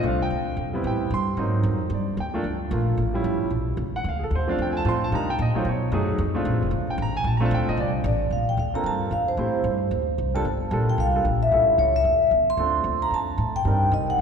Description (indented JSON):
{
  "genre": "jazz, small-group swing and bop",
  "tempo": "224 BPM",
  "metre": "4/4",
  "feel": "swing 60% on 8ths",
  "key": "Bb major",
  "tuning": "A4 = 440 Hz",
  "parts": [
    { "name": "clear grand piano", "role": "accompaniment", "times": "0.0-14.2 s", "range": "F3 to C6", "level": "-27 LUFS", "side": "right 1 dB", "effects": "none" },
    { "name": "upright bass", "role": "bass", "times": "0.0-14.2 s", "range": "F1 to C3", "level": "-25 LUFS", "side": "equal", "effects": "none" },
    { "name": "vibraphone with medium mallets", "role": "melody", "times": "8.1-14.2 s", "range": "C5 to C6", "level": "-22 LUFS", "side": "left 1 dB", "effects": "none" }
  ],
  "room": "wet church reverb, RT60 2.9 s",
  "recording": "recorded in a church or concert hall",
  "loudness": "-21 LUFS",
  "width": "side -6 dB against mid",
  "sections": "0.0-8.3 A section; 8.3-14.2 B section",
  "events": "none",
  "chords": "0.0 Bbmaj9 (rootless); 0.8 Am9; 1.4 Ab9; 1.9 Gm9; 3.0 A7b13; 4.0 Dm7; 5.1 Cm9; 5.6 B7; 6.2 Bbmaj9; 9.4 Am7; 9.9 Cm13; 10.4 Gm9; 11.5 A7b13; 12.6 Dm7; 13.7 Cm9",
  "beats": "0.03 0.30 0.57 | 0.83 1.10 1.37 1.64 | 1.91 2.17 2.44 2.71 | 2.98 3.24 3.51 3.78 | 4.05 4.31 4.58 4.85 | 5.11 5.38 5.65 5.92 | 6.18 6.45 6.71 6.98 | 7.25 7.51 7.78 8.04 | 8.31 8.58 8.85 9.11 | 9.38 9.64 9.91 10.18 | 10.45 10.71 10.98 11.25 | 11.52 11.78 12.05 12.32 | 12.58 12.85 13.12 13.39 | 13.65 13.92 14.19"
}